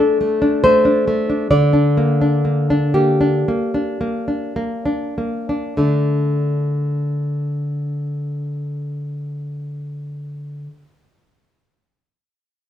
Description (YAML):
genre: romantic piece for solo classical guitar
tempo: 46-71 BPM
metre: 4/4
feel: rubato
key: unclear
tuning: A4 = 436 Hz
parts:
  - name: nylon-string guitar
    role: solo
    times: 0.0-10.7 s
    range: D3 to D5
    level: -17 LUFS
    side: left 1 dB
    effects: none
room: wet studio reverb, RT60 0.7 s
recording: band playing live in one room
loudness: -16 LUFS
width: side -10 dB against mid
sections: 0.0-5.8 A section; 5.8-10.3 B section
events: slowing down 0.0-5.8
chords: 0.0 D5; 1.5 Gm/D; 5.8 D5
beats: 0.63 | 1.51 2.46 3.47 4.56 | 5.79 6.92 8.05 9.14